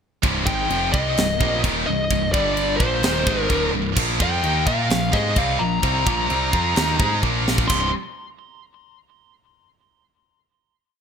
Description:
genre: heavy metal.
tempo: 129 BPM.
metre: 4/4.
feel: straight.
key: C minor.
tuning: A4 = 441 Hz.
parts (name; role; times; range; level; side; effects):
heavy high-gain guitar; riff; 0.2-7.9 s; C2 to Bb4; -26 LUFS; left 13 dB; distortion.
scooped high-gain guitar; riff; 0.2-7.9 s; C2 to Bb4; -25 LUFS; right 13 dB; distortion.
growling picked electric bass; bass; 0.2-7.9 s; C1 to Bb2; -26 LUFS; equal; overdrive.
tight metal drum kit; drums; 0.2-7.8 s; china cymbal, crash cymbal, kick drum, snare drum; -24 LUFS; equal; gated reverb.
high-gain lead guitar; melody; 0.5-7.9 s; C5 to C6; -24 LUFS; left 1 dB; distortion, ping-pong delay.
room: moderate plate reverb, RT60 1.3 s.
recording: bright 1980s-style digital production.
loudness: -18 LUFS.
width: side -7 dB against mid.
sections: 0.2-7.7 riff; 7.7-9.6 final chord.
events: drum fill 7.2-7.7.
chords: 0.2 Cm; 2.3 G5; 2.8 Cm; 4.0 Bb5; 7.7 C5.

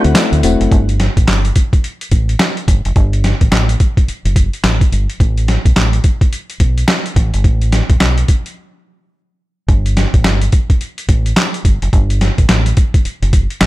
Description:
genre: R&B, new jack swing.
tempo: 107 BPM.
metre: 4/4.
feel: swing 62% on 16ths.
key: unclear.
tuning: A4 = 440 Hz.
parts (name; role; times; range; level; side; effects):
soft electric-piano-like synth keys; accompaniment; 0.0-0.7 s; A3 to F#4; -16 LUFS; left 5 dB; chorus.
phased analog pad; sustained chords; 0.0-0.7 s; D3 to F#5; -33 LUFS; equal; none.
deep dub fingered electric bass; bass; 0.0-13.7 s; E1 to D2; -14 LUFS; equal; none.
boom bap sampler-style drum kit; drums; 0.0-13.7 s; handclaps, hi-hat, kick drum, snare drum, tambourine; -13 LUFS; equal; none.
room: digital ambience.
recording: none.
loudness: -11 LUFS.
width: side -18 dB against mid.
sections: 0.7-13.7 A section.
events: break 0.0-0.7, 8.6-9.7.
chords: 0.0 D7; 0.7 Gsus2; 5.2 Asus2; 9.7 Gsus2.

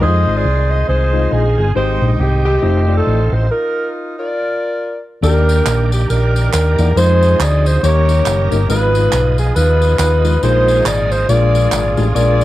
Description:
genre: uptempo gospel.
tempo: 138 BPM.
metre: 4/4.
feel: swing 59% on 8ths.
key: Eb major.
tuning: A4 = 440 Hz.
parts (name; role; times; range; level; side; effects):
mellow saxophone section; melody; 0.0-12.4 s; C4 to Eb5; -16 LUFS; equal; cassette tape.
mellow tine electric piano; accompaniment; 0.0-12.4 s; Ab2 to Eb5; -21 LUFS; left 7 dB; medium stereo tremolo, cassette tape.
bright tonewheel organ; sustained chords; 0.0-12.4 s; Eb3 to Bb4; -26 LUFS; right 8 dB; slow rotary speaker, chorus vibrato, cassette tape.
hollow-body short-scale fingered electric bass; bass; 0.0-12.4 s; F1 to F2; -14 LUFS; equal; none.
tambourine and handclaps; percussion; 5.2-12.4 s; none; -25 LUFS; right 4 dB; none.
room: light reverb, studio ambience.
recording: home recording on cassette.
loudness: -12 LUFS.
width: side -15 dB against mid.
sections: 0.0-5.2 A section; 5.2-12.4 B section.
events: stop 3.5-5.2.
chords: 0.0 Fm7; 1.8 Abmaj7; 2.6 F7; 3.5 Bbsus4; 4.4 Bb; 5.2 Ebmaj7; 7.0 Fm7; 7.8 Eb7; 8.7 Abm6; 10.4 Bb7sus4; 11.3 Bb7.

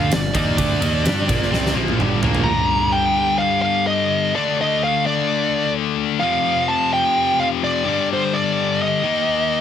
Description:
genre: hard rock.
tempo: 128 BPM.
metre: 4/4.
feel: straight.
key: G minor.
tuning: A4 = 441 Hz.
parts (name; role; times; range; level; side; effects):
smooth overdriven lead guitar; melody; 0.0-9.6 s; C5 to Bb5; -20 LUFS; right 2 dB; none.
cranked stack guitar; riff; 0.0-2.5 s; G2 to G4; -26 LUFS; right 10 dB; overdrive.
high-gain distorted guitar; riff; 0.0-9.6 s; F2 to G4; -21 LUFS; left 11 dB; distortion.
high-gain distorted guitar; riff; 0.0-2.5 s; G2 to G4; -28 LUFS; equal; distortion.
fuzz picked electric bass; bass; 0.0-2.5 s; G1 to G2; -23 LUFS; right 1 dB; overdrive.
huge arena drum kit; drums; 0.1-2.5 s; kick drum, ride cymbal, snare drum, toms; -22 LUFS; right 1 dB; none.
room: light reverb.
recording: heavily compressed radio sound.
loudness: -16 LUFS.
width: side -9 dB against mid.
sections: 0.0-2.5 A section; 2.5-9.6 B section.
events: lead electric guitar solo 0.0-2.5; drum fill 1.5-2.5.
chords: 0.0 Gm; 4.3 D5; 6.2 F5; 7.9 G5; 9.0 Eb5.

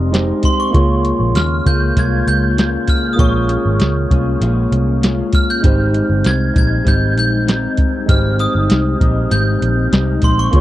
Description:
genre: indie pop, bedroom pop.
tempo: 98 BPM.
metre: 4/4.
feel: straight.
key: Ab major.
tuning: A4 = 440 Hz.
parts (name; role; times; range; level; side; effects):
electric guitar through a small old amp; accompaniment; 0.0-10.6 s; Ab2 to F4; -20 LUFS; left 5 dB; ensemble chorus, warbly pitch drift.
overdriven tine electric piano; accompaniment; 0.0-10.6 s; Ab3 to Eb5; -22 LUFS; right 4 dB; cassette tape.
vintage muted picked electric bass; bass; 0.0-10.6 s; F1 to Eb2; -16 LUFS; equal; none.
soft vintage rhythm box; drums; 0.1-10.6 s; hi-hat, kick drum, snare drum; -15 LUFS; equal; none.
glockenspiel with brass mallets; melody; 0.5-10.6 s; C6 to Ab6; -21 LUFS; right 1 dB; ensemble chorus, tape echo.
room: little or no reverb.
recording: dry, close 1970s-style studio recording.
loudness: -12 LUFS.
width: side -14 dB against mid.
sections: 0.0-10.6 A section.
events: none.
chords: 0.0 Abmaj7; 0.7 Db6; 3.2 Bbm7; 5.6 Abmaj7.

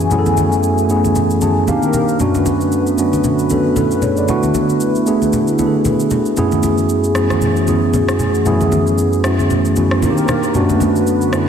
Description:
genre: amapiano.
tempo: 115 BPM.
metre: 4/4.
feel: swing 58% on 16ths.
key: F# minor.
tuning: A4 = 440 Hz.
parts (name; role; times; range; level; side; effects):
mellow tine electric piano; accompaniment; 0.0-11.5 s; F#2 to A5; -14 LUFS; right 1 dB; slow stereo tremolo.
hollow soft pad; sustained chords; 0.0-11.5 s; F#2 to G#5; -19 LUFS; left 1 dB; chorus.
electronic shaker and rim click; drums; 0.0-11.5 s; none; -26 LUFS; equal; none.
congas; percussion; 0.1-10.9 s; none; -23 LUFS; left 3 dB; none.
room: wet lush hall reverb, RT60 2.5 s.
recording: dreamy mix soaked in reverb.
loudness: -13 LUFS.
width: side -8 dB against mid.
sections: 0.0-11.5 A section.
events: tine electric piano fill 1.2-2.2.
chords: 0.0 F#m11; 1.7 Cm7; 2.2 Bm7/F#; 4.3 E7sus4; 6.4 F#m11; 10.0 Cm7; 10.5 Bm7/F#.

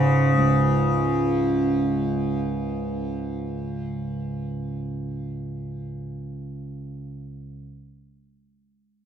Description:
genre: indian classical.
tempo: 159 BPM.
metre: 5/4.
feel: straight.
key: unclear.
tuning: A4 = 440 Hz.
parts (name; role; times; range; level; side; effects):
sitar; melody; 0.0-2.2 s; C#4; -39 LUFS; right 1 dB; none.
tanpura; drone; 0.0-7.5 s; C#2 to C#3; -23 LUFS; right 1 dB; none.
room: light reverb.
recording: dry, close 1970s-style studio recording.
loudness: -23 LUFS.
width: side -8 dB against mid.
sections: none.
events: none.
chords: none.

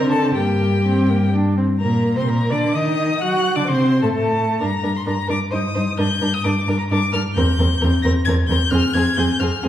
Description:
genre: quick classical-period movement for string quartet.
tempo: 130 BPM.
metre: 3/4.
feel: rubato.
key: G minor.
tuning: A4 = 443 Hz.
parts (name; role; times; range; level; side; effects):
rich violin; melody; 0.0-9.6 s; G5 to Bb6; -24 LUFS; left 4 dB; none.
rich violin; second line; 0.0-9.7 s; G4 to F#5; -25 LUFS; left 1 dB; none.
warm viola; accompaniment; 0.0-9.7 s; A3 to F#4; -22 LUFS; equal; none.
warm cello; bass; 0.0-9.7 s; E2 to F#3; -20 LUFS; equal; none.
room: wet recital hall reverb, RT60 1.3 s.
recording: heard from further back in the room, vinyl crackle.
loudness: -16 LUFS.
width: side -11 dB against mid.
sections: 0.0-1.8 A section; 1.8-9.7 A section.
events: none.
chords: 0.4 Gm; 1.8 Bbadd9; 2.8 N.C.; 3.2 D7; 4.6 Gm; 5.5 Cm/G (rootless); 6.0 Gm; 7.4 C7/E; 8.7 Fm.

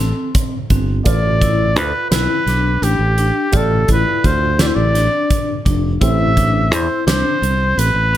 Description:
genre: progressive instrumental, band music in an uneven meter.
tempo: 170 BPM (eighths).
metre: 7/8.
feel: straight.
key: unclear.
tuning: A4 = 440 Hz.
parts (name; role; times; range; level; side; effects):
warm trumpet; melody; 0.0-8.2 s; G4 to E5; -18 LUFS; equal; plate reverb, digital delay.
dark grand piano; accompaniment; 0.0-8.2 s; A3 to D5; -29 LUFS; right 3 dB; none.
vibraphone with medium hard mallets; arpeggios; 0.0-8.2 s; C4 to F4; -23 LUFS; left 4 dB; none.
fingered electric bass; bass; 0.0-8.2 s; F1 to E2; -17 LUFS; equal; none.
huge arena drum kit; drums; 0.3-8.2 s; hi-hat, kick drum, snare drum; -19 LUFS; equal; none.
room: light reverb.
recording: none.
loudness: -13 LUFS.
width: side -12 dB against mid.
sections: 0.0-8.2 A section.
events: none.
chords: 0.0 Am7; 1.1 G7/A; 6.0 Am7.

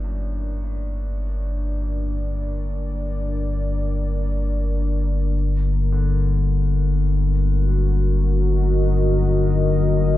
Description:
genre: dark ambient drone.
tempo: free time.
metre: none.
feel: none.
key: G harmonic minor.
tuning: A4 = 439 Hz.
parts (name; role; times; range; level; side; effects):
dark analog pad; sustained chords; 0.0-10.2 s; D4 to Eb5; -28 LUFS; right 1 dB; chorus.
clear concert grand piano; arpeggios; 0.0-10.2 s; F#2 to D3; -40 LUFS; right 1 dB; tape echo.
deep rumbling drone; drone; 0.0-10.2 s; G1; -20 LUFS; left 1 dB; built-in reverb.
room: light reverb, small room reverb.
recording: echo-heavy mix, cassette tape.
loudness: -19 LUFS.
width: side -14 dB against mid.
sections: 0.0-10.2 A section.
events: fade-in on analog synth pad 0.0-10.2; fade-in on grand piano 0.0-10.2.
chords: 0.0 Gm; 5.3 Ebm.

